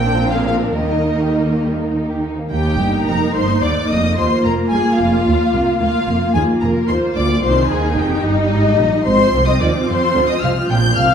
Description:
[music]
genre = quick classical-period movement for string orchestra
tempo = 73 BPM (dotted quarters)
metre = 6/8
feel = rubato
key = Eb major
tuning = A4 = 439 Hz
[part]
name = warm studio violin section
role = melody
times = 0.0-11.1 s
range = Eb5 to G6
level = -21 LUFS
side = left 4 dB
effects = none
[part]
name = warm studio violin section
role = second line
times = 0.0-11.1 s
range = G3 to G5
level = -21 LUFS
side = left 2 dB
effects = none
[part]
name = warm studio viola section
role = accompaniment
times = 0.0-11.1 s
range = Eb3 to F4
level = -19 LUFS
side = right 1 dB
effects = none
[part]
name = dark studio cello section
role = bass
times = 0.0-11.1 s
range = C2 to F3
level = -21 LUFS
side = right 2 dB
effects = none
[part]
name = warm studio double bass section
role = bass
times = 0.0-11.1 s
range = F1 to F2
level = -22 LUFS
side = right 2 dB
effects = none
[sound]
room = wet recital hall reverb, RT60 1.3 s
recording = none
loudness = -14 LUFS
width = side -7 dB against mid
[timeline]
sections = 0.0-2.5 A section; 2.5-11.1 B section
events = none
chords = 0.0 Bb; 0.8 Eb; 4.2 F5; 5.8 Bb; 7.4 Cm; 9.1 Fm/Ab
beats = | 0.76 1.63 | 2.51 3.35 | 4.17 4.99 | 5.81 6.62 | 7.43 8.24 | 9.05 9.88 | 10.70

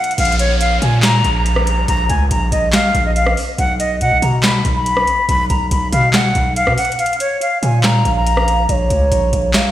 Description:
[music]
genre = hip hop, trap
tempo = 141 BPM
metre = 4/4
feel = half-time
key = Bb phrygian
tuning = A4 = 440 Hz
[part]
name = breathy silver concert flute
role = melody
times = 0.0-8.7 s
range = Db5 to B5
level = -17 LUFS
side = left 1 dB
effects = tape echo
[part]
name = booming analog drum machine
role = drums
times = 0.0-9.6 s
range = crash cymbal, handclaps, hi-hat, rim click, snare drum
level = -19 LUFS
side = equal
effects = none
[part]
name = distorted 808-style bass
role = bass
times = 0.2-9.5 s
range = Bb1 to B2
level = -16 LUFS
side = equal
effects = distortion
[part]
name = downlifter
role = sound effects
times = 0.2-3.6 s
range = none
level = -26 LUFS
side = equal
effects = none
[part]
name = gliding portamento lead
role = second line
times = 7.6-9.7 s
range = Db5 to F5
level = -19 LUFS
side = right 3 dB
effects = chorus, tape echo
[sound]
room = light reverb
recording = played on a big sound system in a bare room, stone room reverb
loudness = -13 LUFS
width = side -12 dB against mid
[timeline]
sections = 0.2-9.7 A section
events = break 7.0-7.4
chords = 0.2 Bb5; 3.6 B5; 7.0 Bbm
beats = | 0.18 0.61 1.03 1.46 | 1.88 2.31 2.73 3.16 | 3.58 4.01 4.44 4.86 | 5.29 5.71 6.14 6.56 | 6.99 7.41 7.84 8.27 | 8.69 9.12 9.54

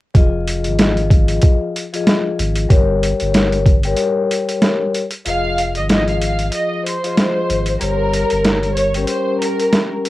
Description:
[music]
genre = hip hop, boom-bap hip-hop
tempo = 94 BPM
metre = 4/4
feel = swing 58% on 16ths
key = F minor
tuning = A4 = 440 Hz
[part]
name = vibraphone with soft mallets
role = accompaniment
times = 0.1-10.1 s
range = F3 to Eb5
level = -20 LUFS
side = left 4 dB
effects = high-pass filter, low-pass filter, cassette tape
[part]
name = boom bap sampler-style drum kit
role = drums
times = 0.1-10.1 s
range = hi-hat, kick drum, snare drum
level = -15 LUFS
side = equal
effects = overdrive, cassette tape
[part]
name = warm sub bass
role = bass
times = 0.2-9.1 s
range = F1 to Ab1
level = -20 LUFS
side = equal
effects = none
[part]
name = warm studio violin section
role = melody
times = 5.3-9.9 s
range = Bb4 to F5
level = -20 LUFS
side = right 1 dB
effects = high-pass filter, low-pass filter, cassette tape, analog delay
[sound]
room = little or no reverb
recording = home recording on cassette, vinyl crackle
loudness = -14 LUFS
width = side -16 dB against mid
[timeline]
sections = 0.1-5.3 A section; 5.3-10.1 B section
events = break 4.0-5.3; kick muted 5.3-10.1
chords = 0.1 Fm7; 2.7 Gdim; 5.3 Fm7; 7.8 Gdim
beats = | 0.15 0.79 1.43 2.06 | 2.70 3.34 3.98 4.62 | 5.25 5.89 6.53 7.17 | 7.81 8.45 9.09 9.72

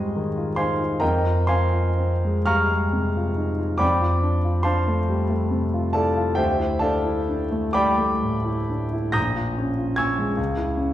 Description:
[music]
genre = classical, impressionist solo piano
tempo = 39-52 BPM (dotted quarters)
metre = 6/8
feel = rubato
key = unclear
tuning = A4 = 440 Hz
[part]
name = clear grand piano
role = solo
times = 0.0-10.9 s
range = Bb1 to Bb6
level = -20 LUFS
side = equal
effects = none
[sound]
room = wet recital hall reverb, RT60 1.4 s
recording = heard from further back in the room, vinyl crackle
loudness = -20 LUFS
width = side -13 dB against mid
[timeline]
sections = 0.0-10.9 A section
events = none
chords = 0.0 Ab6; 1.0 Fmadd9; 3.8 F6; 6.4 Dmadd9; 9.2 Bbm7; 10.4 Dbm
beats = | 1.01 2.46 | 3.81 5.09 | 6.38 7.77 | 9.17 10.38

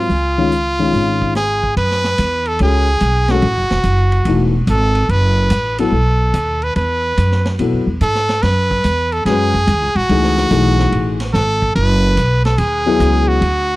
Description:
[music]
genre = modal jazz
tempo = 144 BPM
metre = 4/4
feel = swing 67% on 8ths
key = F# dorian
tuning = A4 = 439 Hz
[part]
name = brilliant trumpet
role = melody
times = 0.0-13.8 s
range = F4 to B4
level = -17 LUFS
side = right 1 dB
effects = tape echo
[part]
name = dark concert grand piano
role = accompaniment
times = 0.0-13.4 s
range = Eb3 to B4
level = -17 LUFS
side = left 4 dB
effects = none
[part]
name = upright bass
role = bass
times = 0.0-13.8 s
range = E1 to B2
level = -16 LUFS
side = equal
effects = none
[part]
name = vintage drum kit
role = drums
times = 0.1-13.6 s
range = hi-hat, kick drum, ride cymbal, rim click, snare drum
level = -28 LUFS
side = right 1 dB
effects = none
[sound]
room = little or no reverb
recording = dry, close 1970s-style studio recording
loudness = -13 LUFS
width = side -18 dB against mid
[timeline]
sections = 0.0-1.8 A section; 1.8-13.8 B section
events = none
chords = 0.1 Db; 1.8 F#m7; 5.1 Esus2/F#; 8.4 F#m7; 11.8 Esus2/F#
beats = | 0.10 0.52 0.93 1.35 | 1.77 2.18 2.60 3.01 | 3.43 3.85 4.26 4.68 | 5.09 5.51 5.92 6.34 | 6.76 7.17 7.59 8.01 | 8.42 8.84 9.26 9.68 | 10.09 10.51 10.93 11.34 | 11.76 12.18 12.59 13.01 | 13.43

